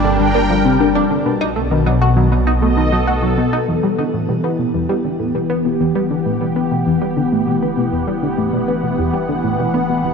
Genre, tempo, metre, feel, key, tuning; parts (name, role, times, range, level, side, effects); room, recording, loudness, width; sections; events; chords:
ambient, sequencer-driven space music; 99 BPM; 4/4; straight; E minor from 3.7 s; A4 = 440 Hz
lush unison pad; sustained chords; 0.0-10.1 s; B2 to G5; -18 LUFS; left 1 dB; chorus, phaser, shimmer reverb
tight sequenced synth; riff; 0.0-10.1 s; E2 to F#4; -18 LUFS; left 1 dB; chorus, phaser, tape echo, shimmer reverb
round analog bass; bass; 0.0-10.1 s; E1 to B1; -23 LUFS; right 1 dB
bubbling stepped-filter texture; texture; 0.0-3.7 s; A5; -35 LUFS; right 5 dB
wet plate reverb, RT60 3.0 s; dreamy mix soaked in reverb, cassette tape; -14 LUFS; side -6 dB against mid
0.0-3.7 A section; 3.7-10.1 B section
0.0 Gm; 1.3 B7; 3.7 Emadd9